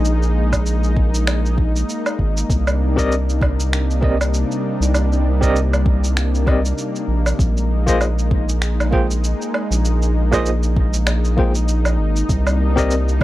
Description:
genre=sunset chillout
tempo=98 BPM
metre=4/4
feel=swing 57% on 16ths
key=unclear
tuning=A4 = 440 Hz
part: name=lush unison pad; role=sustained chords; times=0.0-13.2 s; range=C3 to Eb4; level=-24 LUFS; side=left 1 dB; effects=chorus
part: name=round analog bass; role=bass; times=0.0-13.2 s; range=Ab1 to C2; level=-18 LUFS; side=equal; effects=none
part: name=electronic shaker, woodblock and finger snaps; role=drums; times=0.0-13.2 s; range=none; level=-24 LUFS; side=right 2 dB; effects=none
part: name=electronic kick drum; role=drums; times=0.5-13.2 s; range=none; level=-20 LUFS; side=equal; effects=none
part: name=overdriven tine electric piano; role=accompaniment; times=3.0-12.9 s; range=Bb3 to G5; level=-22 LUFS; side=moving between left 3 dB and right 4 dB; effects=fast tremolo, auto-pan, vintage 12-bit sampler grit, analog delay
room=little or no reverb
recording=dry, gritty hardware recording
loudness=-16 LUFS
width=side -16 dB against mid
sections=0.0-13.2 A section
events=none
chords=0.0 Bb7sus4; 2.5 Cm9; 7.4 Bb7sus4; 12.3 Cm9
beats=| 0.05 0.66 1.27 1.89 | 2.50 3.11 3.72 4.33 | 4.95 5.56 6.17 6.78 | 7.40 8.01 8.62 9.23 | 9.85 10.46 11.07 11.68 | 12.29 12.91

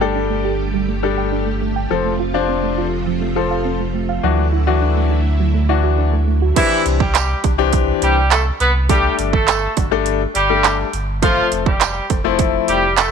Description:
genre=dance-pop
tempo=103 BPM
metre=4/4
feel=straight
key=unclear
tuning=A4 = 441 Hz
part: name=bright concert grand piano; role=accompaniment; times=0.0-12.8 s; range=E3 to A4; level=-20 LUFS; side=left 11 dB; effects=sidechain pumping
part: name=string machine, full ensemble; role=sustained chords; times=0.0-6.5 s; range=C3 to G4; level=-24 LUFS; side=right 1 dB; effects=ensemble chorus, sidechain pumping
part: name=soft round pluck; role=arpeggios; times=0.0-6.5 s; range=F3 to G5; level=-24 LUFS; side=right 14 dB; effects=chorus, sidechain pumping, slapback echo
part: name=warm sub bass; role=bass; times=0.0-13.1 s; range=F1 to D2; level=-20 LUFS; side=equal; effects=sidechain pumping
part: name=clear horn section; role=melody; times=6.6-13.1 s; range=E3 to B4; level=-18 LUFS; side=right 1 dB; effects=slapback echo
part: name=house drum kit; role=drums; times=6.6-13.1 s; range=crash cymbal, handclaps, hi-hat, kick drum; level=-18 LUFS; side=right 6 dB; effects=overdrive
part: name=tambourine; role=percussion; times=7.1-13.1 s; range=none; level=-28 LUFS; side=right 18 dB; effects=none
room=light reverb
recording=1960s-style stereo with parts hard left and right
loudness=-14 LUFS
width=side -6 dB against mid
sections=0.0-6.6 A section; 6.6-13.1 B section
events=drop 6.6-13.1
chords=0.0 Gsus2; 1.9 F; 4.2 Dadd9; 6.6 Cadd9; 8.9 Gsus2; 11.2 F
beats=0.16 0.74 1.32 | 1.91 2.49 3.07 3.65 | 4.24 4.82 5.40 5.98 | 6.57 7.15 7.73 8.31 | 8.89 9.48 10.06 10.64 | 11.22 11.81 12.39 12.97

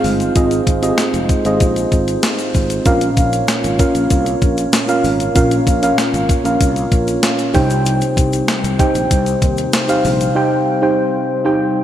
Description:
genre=1980s-style pop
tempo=96 BPM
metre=4/4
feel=straight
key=F minor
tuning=A4 = 440 Hz
part: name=mellow FM electric piano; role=accompaniment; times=0.0-11.8 s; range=Bb2 to G5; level=-16 LUFS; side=right 1 dB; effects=chorus
part: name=glass harmonica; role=sustained chords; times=0.0-11.8 s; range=G3 to Db5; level=-22 LUFS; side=equal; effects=none
part: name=sustaining fretless electric bass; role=bass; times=0.0-10.3 s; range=F1 to Eb2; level=-22 LUFS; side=equal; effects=none
part: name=clean 12-bit digital drum machine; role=drums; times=0.0-10.4 s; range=hi-hat, kick drum, snare drum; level=-17 LUFS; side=equal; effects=gated reverb
part: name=tube shaker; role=percussion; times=0.1-10.4 s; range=none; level=-31 LUFS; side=left 6 dB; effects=none
room=wet plate reverb, RT60 2.7 s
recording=bright 1980s-style digital production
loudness=-13 LUFS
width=side -11 dB against mid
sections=0.0-11.8 A section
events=none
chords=0.0 Fm7; 2.9 Bbm; 7.5 Cm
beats=| 0.36 0.98 1.61 2.23 | 2.86 3.48 4.11 4.73 | 5.36 5.98 6.61 7.23 | 7.86 8.48 9.11 9.73 | 10.36 10.98 11.61

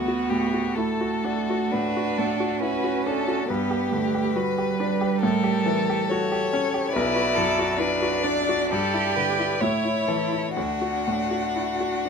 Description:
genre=classical, slow romantic movement for piano quartet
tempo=61-72 BPM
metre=4/4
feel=rubato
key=D major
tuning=A4 = 440 Hz
part: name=rich violin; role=melody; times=0.0-12.1 s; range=F#4 to F#5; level=-29 LUFS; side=left 7 dB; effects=none
part: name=rich cello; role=second line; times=0.0-12.1 s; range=G3 to G4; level=-26 LUFS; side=right 7 dB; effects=none
part: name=rich violin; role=second line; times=0.0-12.1 s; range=F#4 to D5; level=-30 LUFS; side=left 2 dB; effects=none
part: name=bright grand piano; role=accompaniment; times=0.0-12.1 s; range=B1 to G4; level=-26 LUFS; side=left 1 dB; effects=none
room=moderate studio reverb, RT60 0.6 s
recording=none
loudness=-22 LUFS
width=side -6 dB against mid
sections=0.0-12.1 A section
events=none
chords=0.0 D; 3.5 G; 5.2 A7b9; 6.9 Bm; 8.7 Em7/G; 9.6 A; 10.6 D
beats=0.76 1.72 2.62 | 3.49 4.35 5.22 6.09 | 6.93 7.77 8.70 9.61 | 10.56 11.55

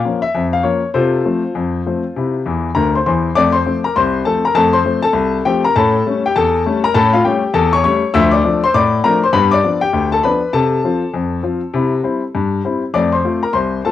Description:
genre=ragtime piano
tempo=100 BPM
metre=2/4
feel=swing 60% on 16ths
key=F major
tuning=A4 = 441 Hz
part: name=warm baby grand piano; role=solo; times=0.0-13.9 s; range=C2 to E6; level=-13 LUFS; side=left 3 dB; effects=cassette tape
room=wet studio reverb, RT60 0.6 s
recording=home recording on cassette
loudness=-13 LUFS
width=side -12 dB against mid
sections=0.0-3.3 A section; 3.3-13.9 B section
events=grand piano fill 2.4-3.3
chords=0.0 Bbm; 0.9 F/C; 2.1 C; 3.3 F; 5.7 A7; 8.1 Dm; 9.3 G7; 10.5 F/C; 11.7 C; 12.9 F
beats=0.33 | 0.93 1.54 | 2.14 2.74 | 3.34 3.95 | 4.55 5.14 | 5.74 6.34 | 6.94 7.54 | 8.14 8.73 | 9.33 9.93 | 10.53 11.13 | 11.73 12.34 | 12.94 13.54

